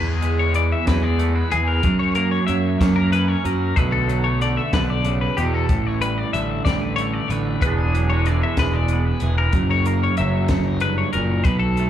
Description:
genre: math rock and midwest emo.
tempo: 62 BPM (dotted quarters).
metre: 6/8.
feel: straight.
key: unclear.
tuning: A4 = 440 Hz.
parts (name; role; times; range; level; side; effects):
twangy electric guitar; accompaniment; 0.0-11.9 s; E2 to D4; -24 LUFS; right 7 dB; lush chorus, slapback echo.
twelve-string electric guitar; arpeggios; 0.0-11.9 s; G4 to E5; -24 LUFS; left 7 dB; tremolo, digital delay, slapback echo.
fuzz picked electric bass; bass; 0.0-11.9 s; E1 to F#2; -21 LUFS; left 1 dB; overdrive.
compact cocktail drum kit; drums; 0.2-11.9 s; hi-hat, kick drum, snare drum; -23 LUFS; left 1 dB; none.
room: small room ambience.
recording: live gig heard through the venue's PA, club reverb.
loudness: -18 LUFS.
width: side -10 dB against mid.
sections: 0.0-11.9 A section.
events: none.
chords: 0.0 E7; 1.8 F#7; 3.8 Bm7; 5.7 A7sus4; 7.6 E7; 9.5 F#7.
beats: 0.88 | 1.84 2.81 | 3.77 4.73 | 5.69 6.65 | 7.61 8.57 | 9.54 10.50 | 11.46.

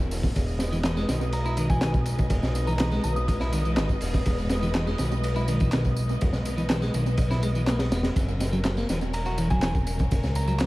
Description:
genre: breakbeat, breaks.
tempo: 123 BPM.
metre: 4/4.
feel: straight.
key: unclear.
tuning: A4 = 438 Hz.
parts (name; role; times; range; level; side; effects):
warm symphonic string section; sustained chords; 0.0-10.7 s; F#3 to D#5; -34 LUFS; left 1 dB; sidechain pumping.
fat analog bass; bass; 0.0-10.7 s; E1 to C#2; -27 LUFS; equal; tube saturation.
crunchy breakbeat drum kit; drums; 0.1-10.7 s; hi-hat, kick drum, ride cymbal, snare drum; -27 LUFS; equal; tape echo.
electronic tambourine and handclaps; drums; 0.1-10.7 s; none; -39 LUFS; equal; tape echo.
clean electric guitar; riff; 0.7-10.7 s; D#3 to F#4; -31 LUFS; equal; tape echo.
glassy synth bell; melody; 1.3-3.4, 9.1-10.6 s; G#5 to D#6; -35 LUFS; right 1 dB; chorus, telephone sound, tape echo.
room: light reverb, small room ambience.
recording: echo-heavy mix, vinyl crackle.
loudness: -23 LUFS.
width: side -19 dB against mid.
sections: 0.0-10.7 A section.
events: none.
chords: 0.4 Emaj7; 8.2 F#7.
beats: | 0.36 0.84 1.33 1.82 | 2.31 2.80 3.28 3.77 | 4.26 4.75 5.24 5.72 | 6.21 6.70 7.19 7.67 | 8.16 8.65 9.14 9.62 | 10.11 10.60.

